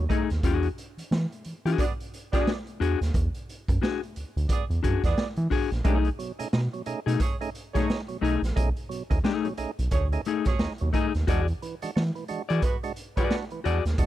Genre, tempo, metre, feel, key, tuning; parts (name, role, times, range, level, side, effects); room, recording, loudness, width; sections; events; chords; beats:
funk; 88 BPM; 4/4; swing 60% on 16ths; A4 = 440 Hz
percussive tonewheel organ; stabs; 0.0-0.2, 5.8-14.1 s; B2 to G#4; -35 LUFS; right 6 dB; overdrive, stopped rotary speaker
round analog bass; bass; 0.0-14.1 s; A#1 to E3; -26 LUFS; right 1 dB
clean electric guitar; accompaniment; 0.1-13.8 s; A3 to D5; -28 LUFS; left 9 dB
raw garage drum kit; drums; 0.1-14.1 s; hi-hat, kick drum, snare drum; -28 LUFS; right 1 dB
mellow horn section; second line; 1.8-13.4 s; G#3 to D5; -33 LUFS; right 7 dB
little or no reverb; -24 LUFS; side -13 dB against mid
0.0-14.1 A section
0.4 E9; 5.8 B13; 11.3 E9
| 0.44 1.11 1.79 2.46 | 3.14 3.82 4.50 5.17 | 5.85 6.53 7.21 7.88 | 8.56 9.24 9.92 10.60 | 11.27 11.95 12.63 13.31 | 13.99